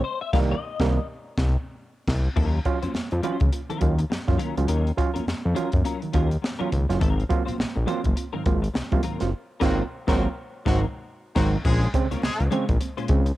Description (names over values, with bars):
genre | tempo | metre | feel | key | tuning
funk | 103 BPM | 4/4 | swing 60% on 16ths | unclear | A4 = 440 Hz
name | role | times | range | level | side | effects
clean electric guitar | accompaniment | 0.0-13.3 s | Gb3 to F5 | -32 LUFS | left 6 dB | ensemble chorus, cassette tape
fat analog bass | bass | 0.0-13.3 s | Gb1 to Gb2 | -23 LUFS | equal | none
overdriven reed electric piano | stabs | 0.3-13.2 s | Ab2 to F4 | -28 LUFS | right 6 dB | cassette tape
crisp fusion drum kit | drums | 0.3-13.4 s | crash cymbal, hi-hat, kick drum, snare drum | -25 LUFS | equal | cassette tape
congas | percussion | 2.8-13.1 s | none | -36 LUFS | right 6 dB | none
clear horn section | second line | 9.6-12.5 s | Eb3 to Bb4 | -32 LUFS | left 1 dB | cassette tape
room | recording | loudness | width
small room ambience | home recording on cassette | -22 LUFS | side -16 dB against mid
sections
0.0-2.4 A section; 2.4-11.6 B section; 11.6-13.4 C section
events
clean electric guitar solo 0.0-2.4; band accent 0.0-2.4, 9.3-11.6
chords
0.0 Cm7; 2.4 Ebm9; 7.0 Ab13; 11.6 Bbm9